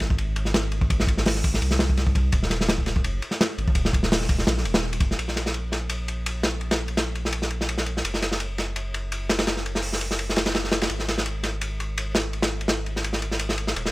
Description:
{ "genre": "drum and bass, jungle", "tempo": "168 BPM", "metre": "4/4", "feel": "swing 53% on 16ths", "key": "unclear", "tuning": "A4 = 440 Hz", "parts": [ { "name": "saturated sub bass", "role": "bass", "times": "0.0-13.9 s", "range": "Eb1 to C2", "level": "-28 LUFS", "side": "equal", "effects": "none" }, { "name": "crunchy breakbeat drum kit", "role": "drums", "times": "0.0-13.9 s", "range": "hi-hat, kick drum, ride cymbal, snare drum", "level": "-23 LUFS", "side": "equal", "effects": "high-pass filter on kick, high-pass filter on cymbals, high-pass filter on hats, high-pass filter on snare, high-pass filter on room" } ], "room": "little or no reverb", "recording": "none", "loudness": "-22 LUFS", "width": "side -20 dB against mid", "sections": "0.0-5.2 A section; 5.2-13.9 B section", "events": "none", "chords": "none" }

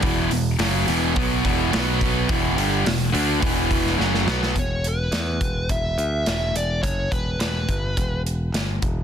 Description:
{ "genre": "hard rock", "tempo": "106 BPM", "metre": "4/4", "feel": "straight", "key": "E minor, E dorian from 4.6 s", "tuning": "A4 = 440 Hz", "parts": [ { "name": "overdriven electric guitar", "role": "riff", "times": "0.0-4.5 s", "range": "E2 to D4", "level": "-24 LUFS", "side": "right 16 dB", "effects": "none" }, { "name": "tight distorted guitar", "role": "riff", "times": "0.0-4.5 s", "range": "E2 to D4", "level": "-24 LUFS", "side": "left 15 dB", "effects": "distortion" }, { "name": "modern bright picked electric bass", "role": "bass", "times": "0.0-9.0 s", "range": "E1 to E2", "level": "-25 LUFS", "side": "equal", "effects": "none" }, { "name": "big rock drum kit", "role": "drums", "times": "0.0-9.0 s", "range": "hi-hat, kick drum, snare drum", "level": "-25 LUFS", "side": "equal", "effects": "none" }, { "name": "dark smooth lead guitar", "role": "melody", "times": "4.6-8.2 s", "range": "B4 to E5", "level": "-26 LUFS", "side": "equal", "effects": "overdrive, plate reverb" } ], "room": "light reverb", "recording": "dense, heavily limited modern master", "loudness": "-20 LUFS", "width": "side -9 dB against mid", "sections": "0.0-4.6 A section; 4.6-9.0 B section", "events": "drum fill 4.0-4.6", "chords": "0.0 E5; 1.7 B5; 2.3 Em" }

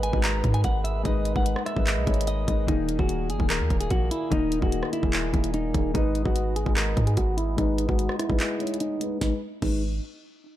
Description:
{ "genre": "hip hop, trap", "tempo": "147 BPM", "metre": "4/4", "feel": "half-time", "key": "G# minor", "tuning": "A4 = 439 Hz", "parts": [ { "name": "clean electric guitar", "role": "melody", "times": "0.0-9.8 s", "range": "D#4 to A#5", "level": "-30 LUFS", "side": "right 1 dB", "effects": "low-pass filter, tape echo" }, { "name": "gliding portamento lead", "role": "second line", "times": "0.0-2.6 s", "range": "B4 to D#5", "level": "-37 LUFS", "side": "right 5 dB", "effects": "chorus, tape echo" }, { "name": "dark concert grand piano", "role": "accompaniment", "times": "0.0-9.8 s", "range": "D#3 to C#5", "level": "-31 LUFS", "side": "left 7 dB", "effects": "low-pass filter" }, { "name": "hand-pumped harmonium", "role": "sustained chords", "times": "0.0-9.4 s", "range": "A#2 to D#5", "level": "-38 LUFS", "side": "right 2 dB", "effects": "low-pass filter" }, { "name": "warm 808-style bass", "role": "bass", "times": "0.0-10.0 s", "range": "D#1 to G#2", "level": "-27 LUFS", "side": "equal", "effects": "none" }, { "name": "trap drum kit", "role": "drums", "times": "0.0-9.7 s", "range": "crash cymbal, handclaps, hi-hat, kick drum, rim click, snare drum", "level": "-27 LUFS", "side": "equal", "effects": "none" } ], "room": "digital ambience", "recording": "dark, warm production", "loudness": "-23 LUFS", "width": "side -13 dB against mid", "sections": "0.0-2.7 A section; 2.7-9.2 B section; 9.2-10.6 C section", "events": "filter sweep 2.7-9.2; break 8.4-9.2", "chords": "0.0 G#m; 2.7 D#sus4; 5.9 G#m" }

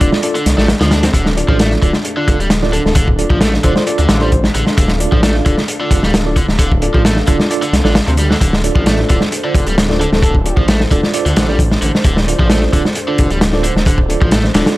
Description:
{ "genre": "breakbeat, breaks", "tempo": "132 BPM", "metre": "4/4", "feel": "straight", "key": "D minor", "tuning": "A4 = 440 Hz", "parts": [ { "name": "dark analog pad", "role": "sustained chords", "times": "0.0-14.8 s", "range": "D4 to F5", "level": "-24 LUFS", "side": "equal", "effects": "chorus, sidechain pumping" }, { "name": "overdriven electric guitar", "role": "riff", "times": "0.0-14.6 s", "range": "C3 to D4", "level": "-20 LUFS", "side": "equal", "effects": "digital delay" }, { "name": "mellow tine electric piano", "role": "stabs", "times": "0.0-14.7 s", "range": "D4 to D5", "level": "-21 LUFS", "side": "right 2 dB", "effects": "medium stereo tremolo, digital delay" }, { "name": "detuned saw bass", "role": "bass", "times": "0.0-14.6 s", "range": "D1 to D2", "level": "-17 LUFS", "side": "equal", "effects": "none" }, { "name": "crunchy breakbeat drum kit", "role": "drums", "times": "0.0-14.8 s", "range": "hi-hat, kick drum, snare drum", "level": "-13 LUFS", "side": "equal", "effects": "none" }, { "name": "soft struck synth lead", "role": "melody", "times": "2.7-4.4, 10.0-10.6 s", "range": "A4 to C5", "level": "-24 LUFS", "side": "left 1 dB", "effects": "chorus, old record sound, digital delay" } ], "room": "studio reverb", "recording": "none", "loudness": "-11 LUFS", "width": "side -18 dB against mid", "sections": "0.0-14.8 A section", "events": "none", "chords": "0.0 Dm" }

